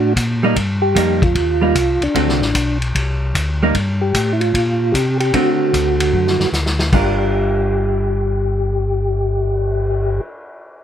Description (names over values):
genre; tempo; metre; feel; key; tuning
soul jazz organ trio; 151 BPM; 4/4; swing 67% on 8ths; G minor; A4 = 440 Hz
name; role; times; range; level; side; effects
percussive tonewheel organ; melody; 0.0-10.2 s; D4 to G4; -19 LUFS; right 1 dB; slow rotary speaker, chorus vibrato
mellow tonewheel organ; bass; 0.0-10.2 s; G1 to D3; -19 LUFS; left 1 dB; chorus vibrato, slow rotary speaker
vintage drum kit; drums; 0.2-10.0 s; crash cymbal, cymbal swell, hi-hat, kick drum, ride cymbal, snare drum; -22 LUFS; left 1 dB; none
vintage hollow-body jazz guitar; accompaniment; 0.4-10.3 s; D3 to Bb4; -19 LUFS; right 3 dB; none
room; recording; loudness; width
little or no reverb; close, detailed microphones; -15 LUFS; side -10 dB against mid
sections
0.6-6.9 A section; 6.9-10.1 B section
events
drum fill 6.5-6.9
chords
0.0 D(b9); 0.6 Cm7; 2.1 D7; 3.7 C5; 5.3 D7; 6.9 Gm7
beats
0.16 | 0.56 0.96 1.35 1.75 | 2.15 2.55 2.94 3.34 | 3.74 4.14 4.54 4.93 | 5.33 5.73 6.13 6.53 | 6.93 7.33 7.73 8.13 | 8.53 8.93 9.33 9.73